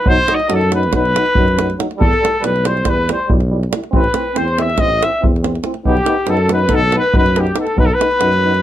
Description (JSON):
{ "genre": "balkan folk, Balkan brass band", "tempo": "280 BPM (eighths)", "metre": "9/8", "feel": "straight", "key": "B phrygian dominant", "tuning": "A4 = 441 Hz", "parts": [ { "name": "warm trumpet", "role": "melody", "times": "0.0-8.6 s", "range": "G4 to E5", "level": "-17 LUFS", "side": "equal", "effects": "none" }, { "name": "clear flugelhorn", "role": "second line", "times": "0.0-8.6 s", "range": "G4 to E5", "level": "-22 LUFS", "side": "left 6 dB", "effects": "none" }, { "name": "clear euphonium", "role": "accompaniment", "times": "0.1-8.5 s", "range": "F#3 to C4", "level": "-25 LUFS", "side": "right 5 dB", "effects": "none" }, { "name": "warm euphonium", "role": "accompaniment", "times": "0.1-8.5 s", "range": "D#4 to E4", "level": "-24 LUFS", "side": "left 3 dB", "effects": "none" }, { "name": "warm tuba", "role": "bass", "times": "0.1-8.6 s", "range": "A1 to F#2", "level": "-18 LUFS", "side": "equal", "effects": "none" }, { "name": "davul", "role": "percussion", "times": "0.1-8.6 s", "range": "none", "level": "-18 LUFS", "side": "right 1 dB", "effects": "none" } ], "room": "light reverb", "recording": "lossy compression artefacts", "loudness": "-13 LUFS", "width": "side -12 dB against mid", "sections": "0.0-8.6 A section", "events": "none", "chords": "0.0 B; 2.0 Em; 3.9 Am; 5.9 B" }